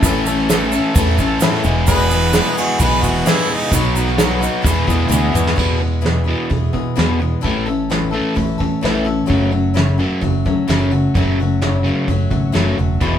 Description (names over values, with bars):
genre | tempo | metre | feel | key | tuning
folk rock and heartland rock | 129 BPM | 4/4 | straight | unclear | A4 = 439 Hz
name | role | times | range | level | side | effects
picked steel-string acoustic guitar | accompaniment | 0.0-13.2 s | E2 to A4 | -20 LUFS | left 4 dB | none
crunchy overdriven guitar | riff | 0.0-13.2 s | E2 to A4 | -20 LUFS | right 1 dB | none
fingered electric bass | bass | 0.0-13.2 s | E1 to E2 | -20 LUFS | right 1 dB | none
soft brush drum kit | drums | 0.0-13.1 s | crash cymbal, hi-hat, kick drum, snare drum, toms | -20 LUFS | right 1 dB | none
egg shaker | percussion | 0.0-5.5 s | none | -28 LUFS | right 6 dB | none
bright harmonica | second line | 1.9-3.7 s | D#4 to B4 | -20 LUFS | right 4 dB | none
room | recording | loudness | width
moderate studio reverb, RT60 0.6 s | band playing live in one room | -14 LUFS | side -9 dB against mid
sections
0.0-5.6 A section; 5.6-13.2 B section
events
drum fill 5.1-5.6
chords
0.0 A; 1.6 E; 3.7 B; 4.7 E; 7.4 A; 9.3 F#m